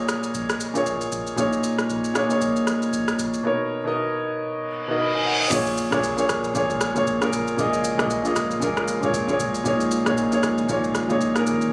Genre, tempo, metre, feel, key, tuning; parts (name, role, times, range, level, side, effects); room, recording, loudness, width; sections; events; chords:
amapiano; 116 BPM; 4/4; swing 58% on 16ths; A4 = 440 Hz
dark grand piano; accompaniment; 0.0-11.7 s; Bb2 to B5; -24 LUFS; equal
booming analog drum machine; drums; 0.1-11.7 s; crash cymbal, kick drum, rim click, shaker; -32 LUFS; equal
reverse cymbal; sound effects; 4.7-5.5 s; -27 LUFS; equal
ethereal airy pad; sustained chords; 7.2-11.7 s; Db3 to F4; -35 LUFS; equal
deep log drum bass; bass; 5.5-11.2 s; Ab1 to Db2; -38 LUFS; equal
little or no reverb; recorded on a phone in the room, club reverb; -23 LUFS; mono
0.0-5.5 A section; 5.5-11.7 B section
reverse cymbal 4.7-5.5; drop 5.5-11.7
0.0 Eb9sus4/Bb; 3.4 Bmaj7; 5.5 Eb9sus4